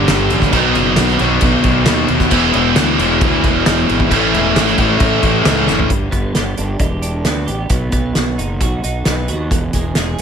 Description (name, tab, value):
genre	quiet-loud alternative rock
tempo	134 BPM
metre	4/4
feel	straight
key	G lydian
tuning	A4 = 439 Hz
part	distorted electric guitar	riff	0.0-5.9 s	E2 to B3	-18 LUFS	left 12 dB	distortion
part	distorted electric guitar	riff	0.0-5.9 s	G2 to E4	-16 LUFS	right 12 dB	distortion
part	fuzz fingered electric bass	bass	0.0-10.2 s	E1 to D#2	-19 LUFS	equal	overdrive
part	loose indie drum kit	drums	0.1-10.2 s	crash cymbal, hi-hat, kick drum, snare drum, toms	-17 LUFS	equal	none
part	twelve-string electric guitar	arpeggios	5.9-10.2 s	E2 to G#4	-23 LUFS	right 5 dB	analog chorus
room	light reverb, small room ambience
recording	none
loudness	-12 LUFS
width	side -7 dB against mid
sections	0.0-5.9 A section; 5.9-10.2 B section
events	drum fill 5.7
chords	0.0 G; 0.5 B; 2.3 E; 4.1 A; 5.9 G; 7.7 B; 9.5 E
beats	0.09 | 0.54 0.98 1.43 1.88 | 2.33 2.77 3.22 3.67 | 4.11 4.56 5.01 5.46 | 5.91 6.35 6.80 7.25 | 7.71 8.16 8.61 9.06 | 9.51 9.96